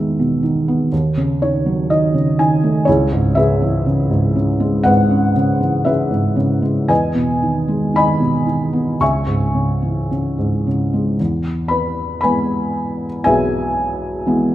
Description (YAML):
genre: classical, lyrical solo piano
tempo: 53-62 BPM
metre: 4/4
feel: rubato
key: C# minor, E major from 11.2 s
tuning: A4 = 439 Hz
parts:
  - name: felt-muted upright piano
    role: solo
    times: 0.0-14.5 s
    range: B1 to C#6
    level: -14 LUFS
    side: equal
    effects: none
room: moderate recital hall reverb, RT60 1.5 s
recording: minimal, uncompressed stereo recording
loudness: -15 LUFS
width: side -14 dB against mid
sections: 0.0-11.2 A section; 11.2-14.5 B section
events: felt piano fill 0.9-2.9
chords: 0.0 Emaj7; 0.9 D#m7b5; 2.9 C#m7; 6.9 Emaj7; 9.0 C#m; 11.2 E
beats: 0.92 1.90 | 2.88 3.86 4.85 5.86 | 6.90 7.95 9.01 10.11 | 11.19 12.23 13.26 14.26